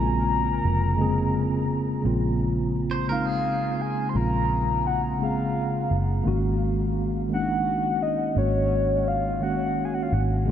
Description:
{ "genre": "R&B", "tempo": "57 BPM (dotted quarters)", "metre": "6/8", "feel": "straight", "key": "Bb minor", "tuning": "A4 = 440 Hz", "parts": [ { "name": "soft octave-layered synth lead", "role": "melody", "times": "0.0-10.2 s", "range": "Db5 to C6", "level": "-28 LUFS", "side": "left 2 dB", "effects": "chorus, phaser, tape echo" }, { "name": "mellow tine electric piano", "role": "accompaniment", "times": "0.0-10.5 s", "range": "Db3 to Ab4", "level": "-26 LUFS", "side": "equal", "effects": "medium stereo tremolo" }, { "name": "vintage muted fingered electric bass", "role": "bass", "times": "0.0-10.5 s", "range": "F1 to Bb1", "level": "-27 LUFS", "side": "equal", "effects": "none" }, { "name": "clean electric guitar", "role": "second line", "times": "2.9-4.1 s", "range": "Ab4 to C5", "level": "-35 LUFS", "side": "right 5 dB", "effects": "none" } ], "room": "moderate huge ambient reverb, RT60 6.8 s", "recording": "dreamy mix soaked in reverb, nothing above 10.6 kHz", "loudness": "-22 LUFS", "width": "side -10 dB against mid", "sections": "0.0-2.0 A section; 2.0-10.5 B section", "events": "none", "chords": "0.0 Bbm7; 2.0 Bbm9; 6.3 Ab7sus4", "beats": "0.99 | 2.04 3.10 | 4.15 5.20 | 6.25 7.30 | 8.36 9.41 | 10.46" }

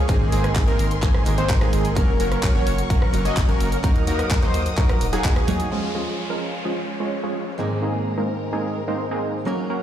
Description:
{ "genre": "EDM, festival progressive house", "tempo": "128 BPM", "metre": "4/4", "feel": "straight", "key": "Db major", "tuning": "A4 = 440 Hz", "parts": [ { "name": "picked steel-string acoustic guitar", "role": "accompaniment", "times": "0.0-9.8 s", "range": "Ab2 to Db5", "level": "-27 LUFS", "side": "right 3 dB", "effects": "sidechain pumping, tape echo" }, { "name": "warm studio string section", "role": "sustained chords", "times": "0.0-9.8 s", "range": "Gb3 to Eb6", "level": "-34 LUFS", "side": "left 3 dB", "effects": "sidechain pumping" }, { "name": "wide unison lead", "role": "arpeggios", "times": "0.1-5.7 s", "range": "Ab4 to Eb5", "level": "-29 LUFS", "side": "left 1 dB", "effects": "lush chorus, sidechain pumping, tape echo" }, { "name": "supersaw stab", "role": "riff", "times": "0.1-9.8 s", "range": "F3 to Eb5", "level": "-26 LUFS", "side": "right 1 dB", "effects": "sidechain pumping, low-pass filter, tape echo" }, { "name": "saturated sub bass", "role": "bass", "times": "0.1-5.6 s", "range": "Eb1 to Eb2", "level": "-25 LUFS", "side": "equal", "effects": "sidechain pumping" }, { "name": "electronic kick drum", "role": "drums", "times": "0.1-5.3 s", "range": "none", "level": "-20 LUFS", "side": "equal", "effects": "none" }, { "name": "pop drum kit", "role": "drums", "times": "0.1-5.8 s", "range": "crash cymbal, handclaps, hi-hat, ride cymbal, rim click", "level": "-31 LUFS", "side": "right 1 dB", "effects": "low-pass filter on hats, low-pass filter on snare, low-pass filter on cymbals, low-pass filter on room" }, { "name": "downlifter", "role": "sound effects", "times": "5.7-9.5 s", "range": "none", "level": "-35 LUFS", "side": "left 1 dB", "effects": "none" } ], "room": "light reverb", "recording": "played on a big sound system in a bare room, large studio reverb", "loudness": "-19 LUFS", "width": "side -10 dB against mid", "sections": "0.0-5.7 A section; 5.7-9.8 B section", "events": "drop 0.0-5.7; filter sweep on supersaw synth 5.7-9.8", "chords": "0.1 Abadd9; 2.0 Gb; 3.8 Ebm; 5.7 Db; 7.6 Abadd9", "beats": "| 0.09 0.56 1.03 1.50 | 1.96 2.43 2.90 3.37 | 3.84 4.31 4.78 5.25 | 5.71 6.18 6.65 7.12 | 7.59 8.06 8.53 9.00 | 9.46" }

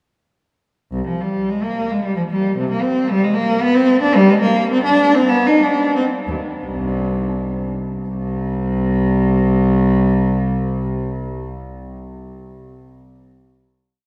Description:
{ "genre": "classical, baroque-style suite movement for unaccompanied cello", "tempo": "78-114 BPM", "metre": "3/4", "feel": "rubato", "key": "C minor", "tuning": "A4 = 435 Hz", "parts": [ { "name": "warm cello", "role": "solo", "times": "0.9-11.6 s", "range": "C2 to Eb4", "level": "-18 LUFS", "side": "equal", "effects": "none" } ], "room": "wet cathedral reverb, RT60 6.3 s", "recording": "heard from further back in the room", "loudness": "-17 LUFS", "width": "mono", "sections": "0.9-8.1 A section; 8.1-12.5 final note", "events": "slowing down 3.4-8.1", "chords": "none", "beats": "| 0.91 1.48 2.03 | 2.57 3.10 3.63 | 4.17 4.72 5.31 | 5.95 6.63 7.34 | 8.09 8.82 9.55 | 10.29 11.02" }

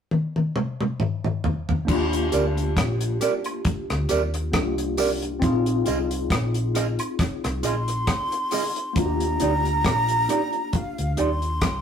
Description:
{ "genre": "lovers rock reggae", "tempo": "68 BPM", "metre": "4/4", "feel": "swing 56% on 16ths", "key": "Eb major", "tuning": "A4 = 437 Hz", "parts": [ { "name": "deep reggae drum kit", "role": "drums", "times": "0.1-11.8 s", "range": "crash cymbal, hi-hat, kick drum, rim click, toms", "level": "-25 LUFS", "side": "left 1 dB", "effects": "tape echo" }, { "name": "mellow tine electric piano", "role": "accompaniment", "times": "1.9-11.8 s", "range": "Bb3 to Ab4", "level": "-28 LUFS", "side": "left 2 dB", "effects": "overdrive, medium stereo tremolo, tape echo" }, { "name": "vintage muted fingered electric bass", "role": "bass", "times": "1.9-11.8 s", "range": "Bb1 to Eb2", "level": "-26 LUFS", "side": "equal", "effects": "none" }, { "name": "mellow electric guitar", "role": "stabs", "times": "2.3-11.3 s", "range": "Eb4 to Eb5", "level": "-24 LUFS", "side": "right 5 dB", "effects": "none" }, { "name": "tambourine and woodblock", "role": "percussion", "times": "2.3-8.7 s", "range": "none", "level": "-36 LUFS", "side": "right 2 dB", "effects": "tape echo" }, { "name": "breathy jazz flute", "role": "melody", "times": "7.6-11.8 s", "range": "F5 to C6", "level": "-26 LUFS", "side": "equal", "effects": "none" } ], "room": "wet studio reverb, RT60 0.5 s", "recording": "rough rehearsal-room recording", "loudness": "-21 LUFS", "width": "side -8 dB against mid", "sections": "0.0-1.9 A section; 1.9-9.0 B section; 9.0-11.8 C section", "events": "drum fill 0.1-1.9", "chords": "0.0 N.C.; 1.9 Ebmaj7; 5.4 Bb7sus4; 9.0 Ebmaj7", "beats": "0.11 0.99 | 1.88 2.76 3.65 4.53 | 5.42 6.30 7.19 8.07 | 8.96 9.85 10.73 11.62" }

